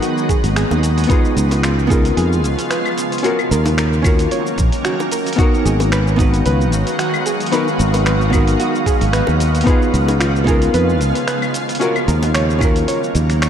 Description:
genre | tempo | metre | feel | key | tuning
sunset chillout | 112 BPM | 4/4 | swing 55% on 16ths | G# dorian | A4 = 439 Hz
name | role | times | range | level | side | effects
archtop guitar, miked and amplified | accompaniment | 0.0-13.5 s | B3 to B4 | -21 LUFS | left 1 dB | auto-pan, digital delay
shimmering ambient pad | sustained chords | 0.0-13.5 s | C#3 to F#4 | -21 LUFS | equal | chorus, built-in reverb
soft round pluck | arpeggios | 0.0-13.5 s | E#4 to C#5 | -24 LUFS | right 2 dB | chorus, digital delay
dusty soul sampler-style drum kit | drums | 0.0-13.5 s | claves, finger snaps, hi-hat, shaker | -25 LUFS | left 1 dB | none
electronic kick drum | drums | 0.3-12.7 s | none | -16 LUFS | equal | none
sustaining fretless electric bass | bass | 0.4-13.5 s | G#1 to E#2 | -16 LUFS | equal | none
bongos | percussion | 0.7-12.3 s | none | -28 LUFS | left 1 dB | none
wind-like tuned noise texture | texture | 6.0-13.5 s | E#5 | -28 LUFS | right 3 dB | built-in reverb
room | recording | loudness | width
moderate concert hall reverb, RT60 2.0 s, digital ambience | dark, warm production | -14 LUFS | side -9 dB against mid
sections
0.0-13.5 A section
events
kick drops out 12.9-13.5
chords
0.0 G#m7; 1.1 C#7; 3.2 D#m7; 5.4 G#m7; 9.7 C#7; 11.8 D#m7

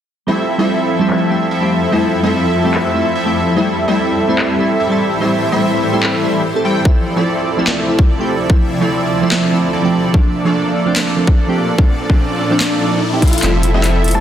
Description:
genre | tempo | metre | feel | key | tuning
future bass | 146 BPM | 4/4 | half-time | F major | A4 = 440 Hz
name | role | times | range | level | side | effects
glassy digital keys | accompaniment | 0.3-14.2 s | F3 to A4 | -18 LUFS | right 1 dB | chorus, phaser, sidechain pumping, dub echo
shimmering ambient pad | sustained chords | 1.3-14.2 s | D2 to E5 | -24 LUFS | left 1 dB | chorus, built-in reverb, sidechain pumping
big bright polysynth | riff | 0.3-14.2 s | F3 to G5 | -16 LUFS | equal | wide subtle chorus, sidechain pumping, dub echo
trap drum kit | drums | 1.1-14.2 s | handclaps, hi-hat, snare drum | -21 LUFS | left 1 dB | overdrive, low-pass filter on snare, low-pass filter on hats
electronic kick drum | drums | 6.9-13.3 s | none | -12 LUFS | equal | overdrive
riser | sound effects | 11.5-14.2 s | none | -23 LUFS | left 1 dB | none
saturated sub bass | bass | 13.4-14.2 s | F1 | -15 LUFS | equal | sidechain pumping
thumb-piano-like synth pluck | melody | 14.1-14.2 s | A5 | -17 LUFS | equal | chorus, sidechain pumping
room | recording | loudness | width
moderate lush hall reverb, RT60 1.9 s, digital ambience | dense, heavily limited modern master | -12 LUFS | side -10 dB against mid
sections
0.3-13.4 A section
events
filter sweep on drum 0.3-13.4; riser 11.5-13.4, 13.4-14.2; drum fill 13.2, 13.4-14.2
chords
0.3 Fmaj7; 3.6 Am7; 6.9 Dm9; 10.1 Bbmaj7; 13.4 Fmaj7

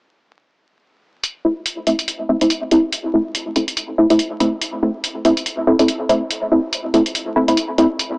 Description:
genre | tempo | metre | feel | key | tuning
deep dubstep | 142 BPM | 4/4 | swing 58% on 16ths, half-time | A minor | A4 = 440 Hz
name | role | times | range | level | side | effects
electronic hi-hat | drums | 1.2-8.1 s | none | -22 LUFS | equal | none
filtered dub chord stab | stabs | 1.4-7.9 s | A3 to E4 | -16 LUFS | equal | lush chorus, dub echo
room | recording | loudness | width
light reverb | dry, gritty hardware recording, vinyl crackle, small speaker sound | -15 LUFS | side -28 dB against mid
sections
1.2-8.2 A section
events
filter sweep on synth stab 1.2-8.2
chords
1.2 Am

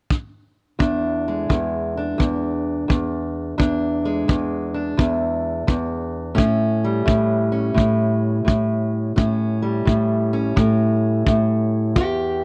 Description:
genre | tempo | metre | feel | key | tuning
acoustic country blues, solo or duo | 86 BPM | 4/4 | swing 67% on 8ths | unclear | A4 = 439 Hz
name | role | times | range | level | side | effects
kick drum | drums | 0.1-12.2 s | none | -22 LUFS | equal | none
fingerpicked steel-string acoustic guitar | melody | 0.8-12.4 s | E2 to G4 | -21 LUFS | equal | none
room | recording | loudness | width
small room ambience | dry, close 1970s-style studio recording | -21 LUFS | mono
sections
0.8-12.0 A section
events
none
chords
0.0 N.C.; 0.8 E7; 6.4 A7

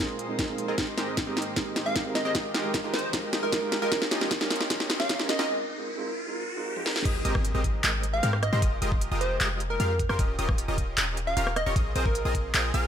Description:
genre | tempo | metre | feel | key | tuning
future bass | 153 BPM | 4/4 | half-time | Ab major | A4 = 440 Hz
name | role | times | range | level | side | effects
felt-muted upright piano | accompaniment | 0.0-7.0 s | G3 to Eb5 | -34 LUFS | right 4 dB | vintage 12-bit sampler grit, sidechain pumping, ping-pong delay
rich chamber string section | sustained chords | 0.0-5.5 s | Eb2 to Db5 | -41 LUFS | left 1 dB | sidechain pumping, low-pass filter
supersaw stab | riff | 0.0-12.9 s | Ab3 to F5 | -33 LUFS | equal | sidechain pumping
trap drum kit | drums | 0.2-12.8 s | crash cymbal, handclaps, hi-hat, rim click, snare drum, toms | -28 LUFS | equal | none
electronic kick drum | drums | 0.4-12.4 s | none | -29 LUFS | equal | none
riser and impact | sound effects | 3.0-8.6 s | none | -38 LUFS | equal | none
plucky unison lead | melody | 1.9-5.5, 8.1-12.3 s | Bb4 to F5 | -31 LUFS | equal | sidechain pumping, tape echo
wide unison pluck | arpeggios | 7.1-12.9 s | C6 to F6 | -37 LUFS | equal | sidechain pumping, ping-pong delay
warm 808-style bass | bass | 7.1-12.9 s | Eb1 to Ab2 | -29 LUFS | equal | sidechain pumping
room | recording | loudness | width
moderate digital room reverb, RT60 1.1 s, digital ambience | high-pass filter | -25 LUFS | side -9 dB against mid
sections
0.0-7.1 A section; 7.1-12.9 B section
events
build-up 0.0-7.1; drum fill 0.0-5.5, 6.8; riser 3.0-7.1; break 5.5-7.1; drop 7.1-12.9; impact 7.1-8.6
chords
0.0 Bb9sus4; 0.8 Abmaj9; 2.3 Fm11; 3.9 Eb9; 5.5 Bb9sus4; 7.1 Abmaj9; 8.6 Fm11; 10.2 Eb9; 11.8 Bb9sus4

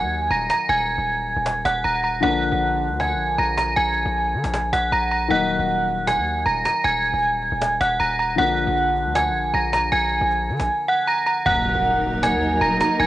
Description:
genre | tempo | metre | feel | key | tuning
hip hop, trap | 156 BPM | 4/4 | half-time | Eb harmonic minor | A4 = 440 Hz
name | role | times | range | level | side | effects
metallic FM bell | melody | 0.0-13.1 s | Gb5 to Bb6 | -20 LUFS | right 1 dB | chorus, low-pass filter, cassette tape, analog delay
felt-muted upright piano | accompaniment | 0.0-11.5 s | D3 to Eb4 | -29 LUFS | left 7 dB | low-pass filter
hard-hitting 808-style bass | bass | 0.0-13.1 s | Eb1 to D3 | -28 LUFS | equal | none
cajon | drums | 0.5-13.0 s | none | -30 LUFS | left 1 dB | cassette tape
dark studio string section | sustained chords | 11.5-13.1 s | Gb3 to Bb4 | -23 LUFS | equal | none
impact | sound effects | 11.5-13.0 s | none | -31 LUFS | equal | none
room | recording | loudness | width
light reverb, small room ambience | home recording on cassette, nothing above 10.6 kHz | -18 LUFS | side -14 dB against mid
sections
0.0-11.5 A section; 11.5-13.1 B section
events
break 0.0-5.3; impact 11.5-13.0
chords
0.0 Ebm; 2.2 Bb; 5.3 Ebm; 8.4 Bb; 11.5 Ebm

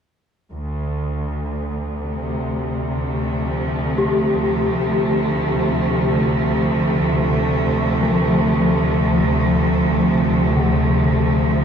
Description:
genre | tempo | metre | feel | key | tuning
dark ambient drone | free time | none | none | D minor | A4 = 440 Hz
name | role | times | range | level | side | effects
rich studio cello section | sustained chords | 0.5-11.6 s | D2 to A3 | -18 LUFS | right 1 dB | shimmer reverb
analog drone | drone | 1.7-11.6 s | D2 to F3 | -31 LUFS | equal | none
gamelan-type bronze metallophone | arpeggios | 4.0-11.6 s | D3 to G4 | -23 LUFS | left 4 dB | ping-pong delay, shimmer reverb
room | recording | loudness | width
wet huge ambient reverb, RT60 8.0 s | dark, warm production | -17 LUFS | side -7 dB against mid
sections
0.5-11.6 A section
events
none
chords
0.5 Dm

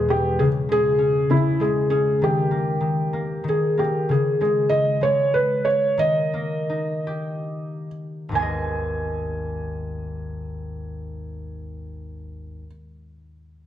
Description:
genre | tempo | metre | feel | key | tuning
children's music, lullaby | 63-100 BPM | 3/4 | rubato | G# harmonic minor | A4 = 441 Hz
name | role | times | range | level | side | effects
felt-muted upright piano | melody | 0.0-12.7 s | E4 to G#5 | -21 LUFS | right 1 dB | none
concert harp | accompaniment | 0.0-12.7 s | G#1 to D#5 | -25 LUFS | left 2 dB | none
room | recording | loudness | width
wet recital hall reverb, RT60 1.7 s | dark, warm production | -20 LUFS | side -11 dB against mid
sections
0.0-4.1 A section; 4.1-8.4 B section; 8.4-13.7 C section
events
slowing down 4.1-8.4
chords
0.4 C#5; 2.2 D#; 4.1 C#m; 6.0 D#; 8.4 G#m

